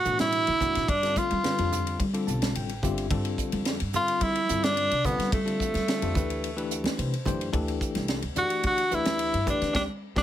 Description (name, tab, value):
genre	electric jazz fusion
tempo	108 BPM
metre	4/4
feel	straight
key	unclear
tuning	A4 = 440 Hz
part	clear tenor saxophone	melody	0.0-10.2 s	A3 to F#4	-26 LUFS	right 1 dB	slapback echo
part	tight funk drum kit	drums	0.0-10.2 s	hi-hat, kick drum, ride cymbal, snare drum	-32 LUFS	right 1 dB	none
part	bell-like tine electric piano	accompaniment	0.1-10.2 s	B2 to A5	-33 LUFS	left 4 dB	medium stereo tremolo
part	upright bass	bass	0.1-10.2 s	G1 to G3	-32 LUFS	equal	none
part	congas	percussion	0.2-10.2 s	none	-35 LUFS	right 2 dB	none
room	light reverb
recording	none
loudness	-24 LUFS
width	side -12 dB against mid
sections	0.0-10.2 A section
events	tine electric piano fill 2.0-3.1, 6.7-7.5; band accent 9.7-10.2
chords	0.0 Asus4; 0.9 G9sus4; 6.2 D9sus4